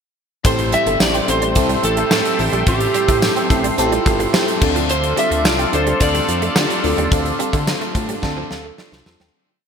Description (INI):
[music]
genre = 1980s-style pop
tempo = 108 BPM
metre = 4/4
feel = straight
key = D minor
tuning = A4 = 441 Hz
[part]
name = FM electric piano with soft pad layer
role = accompaniment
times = 0.4-9.4 s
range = A2 to C6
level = -22 LUFS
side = left 1 dB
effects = chorus, phaser
[part]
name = biting overdriven guitar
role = accompaniment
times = 0.4-9.7 s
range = A2 to D4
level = -27 LUFS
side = equal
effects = wide subtle chorus
[part]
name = sweeping resonant pad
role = sustained chords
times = 0.4-9.3 s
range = A4 to C6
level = -24 LUFS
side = equal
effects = chorus
[part]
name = fat analog bass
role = bass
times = 0.4-9.3 s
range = G1 to D3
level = -23 LUFS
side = equal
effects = none
[part]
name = gated 80s drum kit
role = drums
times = 0.4-9.3 s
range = crash cymbal, hi-hat, kick drum, snare drum, tambourine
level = -19 LUFS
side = equal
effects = gated reverb
[part]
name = lightly driven lead guitar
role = melody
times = 0.5-8.8 s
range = G4 to E5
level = -21 LUFS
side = right 1 dB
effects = lush chorus
[part]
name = direct-recorded clean electric guitar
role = riff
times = 0.6-9.3 s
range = F3 to C4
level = -28 LUFS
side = right 7 dB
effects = ensemble chorus
[sound]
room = moderate lush hall reverb, RT60 2.1 s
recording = bright 1980s-style digital production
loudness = -15 LUFS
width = side -6 dB against mid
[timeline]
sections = 0.4-9.3 chorus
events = fade-out 7.1-9.3; drum fill 8.2-9.3; FM electric piano fill 8.2-9.3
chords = 0.4 Am7; 4.6 Dm7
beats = | 0.45 1.00 1.56 2.12 | 2.67 3.23 3.78 4.34 | 4.89 5.45 6.00 6.56 | 7.12 7.67 8.23 8.78